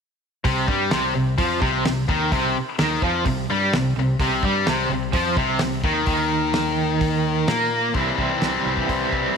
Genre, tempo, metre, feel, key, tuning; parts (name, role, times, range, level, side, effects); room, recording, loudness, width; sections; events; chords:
classic rock; 128 BPM; 4/4; straight; A4 = 438 Hz
tight distorted guitar; riff; 0.4-9.4 s; C3 to E4; -22 LUFS; left 10 dB; distortion
damped 70s drum kit; drums; 0.4-9.2 s; hi-hat, kick drum, snare drum; -26 LUFS; right 1 dB
cranked stack guitar; riff; 0.5-9.4 s; C3 to E4; -23 LUFS; right 10 dB; overdrive, tremolo
growling fingered electric bass; bass; 0.5-9.3 s; C2 to Bb2; -29 LUFS; equal; overdrive
moderate echo chamber reverb, RT60 2.3 s; 1960s-style stereo with parts hard left and right; -19 LUFS; side -6 dB against mid
0.4-8.0 A section; 8.0-9.4 B section
0.4 C5; 8.0 C